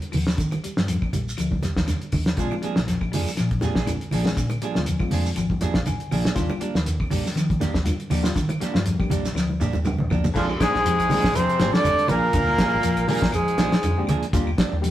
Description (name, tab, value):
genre	afrobeat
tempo	120 BPM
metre	4/4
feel	swing 55% on 16ths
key	Bb mixolydian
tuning	A4 = 440 Hz
part	clean electric guitar	arpeggios	0.0-14.9 s	D3 to G3	-30 LUFS	left 2 dB	warbly pitch drift
part	cloth-damped thuddy drum kit	drums	0.0-14.9 s	crash cymbal, hi-hat, kick drum, snare drum, toms	-25 LUFS	equal	none
part	deep dub fingered electric bass	bass	0.1-14.8 s	Ab1 to Eb3	-28 LUFS	equal	none
part	claves	percussion	0.1-14.6 s	none	-43 LUFS	right 1 dB	none
part	congas	percussion	0.1-14.2 s	none	-29 LUFS	right 1 dB	none
part	shekere	percussion	0.2-14.9 s	none	-32 LUFS	right 1 dB	none
part	reed electric piano	accompaniment	2.4-14.9 s	G3 to Ab5	-33 LUFS	left 5 dB	none
part	clean electric guitar	stabs	2.4-14.7 s	F3 to Ab4	-30 LUFS	right 5 dB	none
part	raspy baritone saxophone	second line	10.3-14.0 s	F2 to D3	-29 LUFS	left 4 dB	none
part	breathy trumpet	melody	10.4-14.0 s	F4 to D5	-23 LUFS	right 1 dB	none
part	growling tenor saxophone	second line	10.4-14.1 s	F3 to D4	-28 LUFS	right 2 dB	none
room	moderate stone room reverb, RT60 1.0 s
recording	rough rehearsal-room recording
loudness	-20 LUFS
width	side -13 dB against mid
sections	0.0-10.4 A section; 10.4-14.9 B section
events	reed electric piano fill 5.4-6.4; drum fill 9.4-10.4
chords	0.0 Ebmaj7; 2.4 Bb7; 6.4 Ebmaj7; 10.4 Bb7; 14.3 Ebmaj7